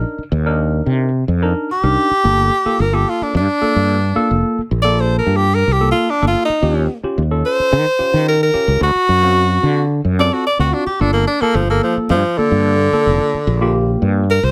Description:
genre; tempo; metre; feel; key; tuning
straight-eighth soul blues; 110 BPM; 4/4; straight; G minor; A4 = 437 Hz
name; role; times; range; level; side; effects
clear tenor saxophone; melody; 0.0-14.5 s; D3 to D5; -18 LUFS; equal; none
tine electric piano; accompaniment; 0.0-14.2 s; Bb3 to E#5; -23 LUFS; equal; overdrive, phaser
fretless electric bass; bass; 0.0-14.5 s; F1 to Eb3; -19 LUFS; equal; none
room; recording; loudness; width
light reverb; none; -16 LUFS; mono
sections
0.0-14.5 A section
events
tenor saxophone solo 0.0-14.5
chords
0.0 Cm9; 2.2 Gm9; 6.6 Eb7; 8.8 D7#9; 11.0 Gm9

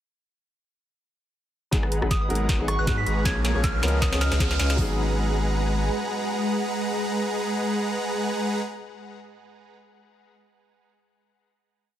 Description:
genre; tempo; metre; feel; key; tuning
future bass; 157 BPM; 4/4; swing 55% on 16ths, half-time; G# dorian; A4 = 440 Hz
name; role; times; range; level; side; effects
warm baby grand piano; accompaniment; 1.7-8.8 s; E#3 to A#4; -32 LUFS; left 2 dB; sidechain pumping, ping-pong delay
ethereal airy pad; sustained chords; 2.3-8.6 s; G#3 to F#5; -34 LUFS; right 2 dB; ensemble chorus, built-in reverb, tremolo, sidechain pumping
supersaw chords; riff; 1.7-8.6 s; G#3 to C#6; -28 LUFS; equal; sidechain pumping, low-pass filter, ping-pong delay
saturated sub bass; bass; 1.7-5.9 s; G#1 to G#2; -25 LUFS; equal; sidechain pumping
trap drum kit; drums; 1.7-4.9 s; hi-hat, kick drum; -25 LUFS; equal; none
trap drum kit; drums; 1.7-4.8 s; hi-hat, rim click, snare drum; -29 LUFS; equal; high-pass filter on snare, high-pass filter on hats
riser; sound effects; 2.6-4.8 s; none; -37 LUFS; right 1 dB; none
soft synth bell; melody; 2.1-4.7 s; C#6 to B6; -31 LUFS; right 1 dB; chorus, sidechain pumping, low-pass filter, ping-pong delay
room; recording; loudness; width
light reverb; heavily compressed radio sound; -22 LUFS; side -11 dB against mid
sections
1.7-4.8 build; 4.8-7.8 final chord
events
build-up 1.7-4.8; drum fill 1.7-4.8; filter sweep on supersaw synth 1.7-4.8; riser 2.6-4.8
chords
1.7 G#m7; 3.3 A#m7; 3.8 C#7; 4.8 G#m7

